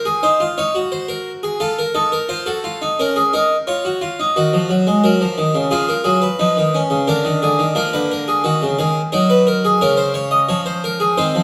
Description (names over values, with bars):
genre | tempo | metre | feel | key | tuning
classical, baroque-style 3-part fugue for harpsichord | 88 BPM | 4/4 | straight | unclear | A4 = 440 Hz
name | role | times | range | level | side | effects
harpsichord | solo | 0.0-11.4 s | Db3 to Eb5 | -17 LUFS | equal | none
room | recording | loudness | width
wet stone room reverb, RT60 1.2 s | none | -17 LUFS | mono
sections
0.0-11.4 A section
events
none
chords
0.2 Cm7b5/Eb; 1.6 F; 3.0 Bbm/Db; 5.7 Fm7b5; 7.1 Bb/D; 8.4 Ebm; 9.8 Bbm/Db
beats
0.24 0.93 | 1.62 2.30 2.99 3.68 | 4.36 5.04 5.72 6.40 | 7.08 7.76 8.44 9.12 | 9.81 10.49 11.18